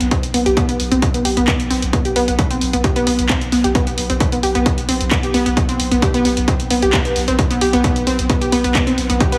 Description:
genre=driving peak-time techno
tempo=132 BPM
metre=4/4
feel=straight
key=unclear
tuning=A4 = 437 Hz
part: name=saturated sub bass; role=bass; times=0.0-9.2 s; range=B1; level=-25 LUFS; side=equal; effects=overdrive, sidechain pumping, low-pass filter
part: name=punchy analog drum machine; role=drums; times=0.0-9.4 s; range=handclaps, hi-hat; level=-26 LUFS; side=equal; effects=none
part: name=unison pluck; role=riff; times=0.1-9.4 s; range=B3 to G4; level=-20 LUFS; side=equal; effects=sidechain pumping, dub echo
part: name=electronic kick drum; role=drums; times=0.1-9.3 s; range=none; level=-21 LUFS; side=equal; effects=none
room=moderate lush hall reverb, RT60 1.7 s, digital ambience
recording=heavily compressed radio sound, multiband compression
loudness=-17 LUFS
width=mono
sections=0.0-9.4 A section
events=none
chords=none

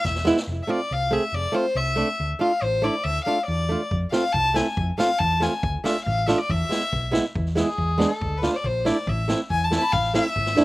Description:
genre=klezmer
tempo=140 BPM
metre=2/4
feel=straight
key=unclear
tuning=A4 = 440 Hz
part: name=rich violin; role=melody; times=0.0-10.6 s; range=G#4 to B5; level=-24 LUFS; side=left 2 dB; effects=none
part: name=hollow-body short-scale picked electric bass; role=bass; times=0.0-10.6 s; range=E1 to F2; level=-26 LUFS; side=equal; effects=none
part: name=street-band drum kit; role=drums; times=0.0-0.5, 3.9-10.6 s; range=kick drum, snare drum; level=-30 LUFS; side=equal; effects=none
part: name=flamenco guitar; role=accompaniment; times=0.2-10.6 s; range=G#3 to G#4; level=-24 LUFS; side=right 2 dB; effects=slapback echo
part: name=breathy trombone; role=second line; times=10.6 s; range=D4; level=-16 LUFS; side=right 2 dB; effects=none
room=little or no reverb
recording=recorded outdoors, with no room sound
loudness=-21 LUFS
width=side -18 dB against mid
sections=0.5-7.4 A section; 7.4-10.6 B section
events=drum fill 0.0-0.5; violin solo 7.4-10.6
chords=0.5 F; 2.2 Dm; 3.9 F; 5.6 Dm; 6.5 E; 8.2 D5; 9.1 Am

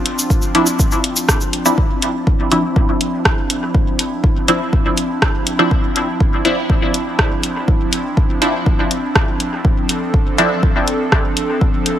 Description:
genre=dub techno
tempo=122 BPM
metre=4/4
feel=straight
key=D minor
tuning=A4 = 439 Hz
part: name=airy breathy pad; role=sustained chords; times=0.0-12.0 s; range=F3 to A4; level=-21 LUFS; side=equal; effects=chorus, sidechain pumping
part: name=deep house drum kit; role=drums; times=0.1-12.0 s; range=hi-hat, rim click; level=-18 LUFS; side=equal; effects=dub echo
part: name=tube shaker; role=percussion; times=0.2-1.8 s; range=none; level=-20 LUFS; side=left 1 dB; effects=none
part: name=electronic kick drum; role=drums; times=0.3-11.7 s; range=none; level=-16 LUFS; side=equal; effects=none
part: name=filtered dub chord stab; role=stabs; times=0.5-10.5 s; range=F3 to E4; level=-19 LUFS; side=equal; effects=chorus, phaser, sidechain pumping, dub echo
room=light reverb, digital ambience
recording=none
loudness=-14 LUFS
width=side -11 dB against mid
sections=0.0-1.8 A section; 1.8-12.0 A section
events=none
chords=0.0 Dm9

